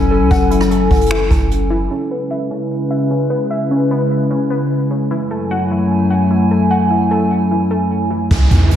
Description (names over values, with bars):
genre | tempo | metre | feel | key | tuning
hip hop, atmospheric cloud-rap | 150 BPM | 4/4 | half-time | unclear | A4 = 443 Hz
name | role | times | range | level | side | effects
warbly tape-like pad | sustained chords | 0.0-8.8 s | F#2 to G#5 | -15 LUFS | left 1 dB | chorus, built-in reverb, sidechain pumping, low-pass filter
warbly dusty pluck | arpeggios | 0.0-8.3 s | C#4 to F#5 | -22 LUFS | left 1 dB | chorus, low-pass filter, analog delay
soft 808-style bass | bass | 0.0-1.9, 8.3-8.8 s | F#1 to E2 | -16 LUFS | equal | none
jazz brush drum kit | drums | 0.3-1.6, 8.3-8.8 s | finger snaps, hi-hat, kick drum, rim click | -16 LUFS | equal | none
downlifter | sound effects | 8.3-8.8 s | none | -22 LUFS | equal | none
room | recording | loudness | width
wet lush hall reverb, RT60 1.5 s, small room ambience | dreamy mix soaked in reverb | -13 LUFS | side -10 dB against mid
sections
0.0-1.9 A section; 1.9-8.3 B section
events
filter sweep 1.9-8.3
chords
0.0 F#m7; 1.9 C#m7; 5.1 F#m7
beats
| 0.31 0.71 1.11 1.51 | 1.91 2.31 2.71 3.11 | 3.51 3.91 4.31 4.71 | 5.11 5.51 5.91 6.31 | 6.71 7.11 7.51 7.91 | 8.31 8.71